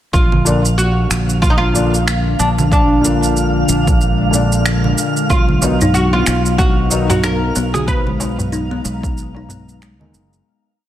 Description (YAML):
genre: organic downtempo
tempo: 93 BPM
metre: 4/4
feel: swing 59% on 16ths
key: Bb phrygian dominant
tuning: A4 = 440 Hz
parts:
  - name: oud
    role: melody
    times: 0.1-10.1 s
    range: D4 to Cb5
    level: -20 LUFS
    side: equal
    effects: tape echo
  - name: ethereal airy pad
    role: sustained chords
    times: 0.7-10.4 s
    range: D3 to Bb5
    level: -23 LUFS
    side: left 2 dB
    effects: ensemble chorus, built-in reverb, sidechain pumping
  - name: fretless electric bass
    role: bass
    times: 0.1-10.4 s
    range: Gb1 to Eb2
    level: -18 LUFS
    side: equal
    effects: analog chorus
  - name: electronic kick drum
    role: drums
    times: 0.1-9.1 s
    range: none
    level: -16 LUFS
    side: equal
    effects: overdrive
  - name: electronic shaker, congas and finger snaps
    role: drums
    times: 0.1-10.4 s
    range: none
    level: -21 LUFS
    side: right 3 dB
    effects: overdrive
  - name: twinkling granular texture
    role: texture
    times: 0.5-10.5 s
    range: F5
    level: -26 LUFS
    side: right 4 dB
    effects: built-in reverb
  - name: felt-muted upright piano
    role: accompaniment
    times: 0.4-10.4 s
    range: Bb2 to Bb4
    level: -21 LUFS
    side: left 3 dB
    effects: sidechain pumping, tape echo
  - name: kalimba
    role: arpeggios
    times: 5.3-9.9 s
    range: F#3 to F#4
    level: -22 LUFS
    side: left 2 dB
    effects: tape echo
  - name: darbuka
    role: percussion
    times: 5.6-9.6 s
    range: none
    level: -23 LUFS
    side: equal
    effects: none
room: light reverb, small room ambience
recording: none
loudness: -12 LUFS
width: side -12 dB against mid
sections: 0.1-10.5 groove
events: fade-out 7.0-10.5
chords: 0.1 Bb; 5.3 B; 7.9 Abm7/Cb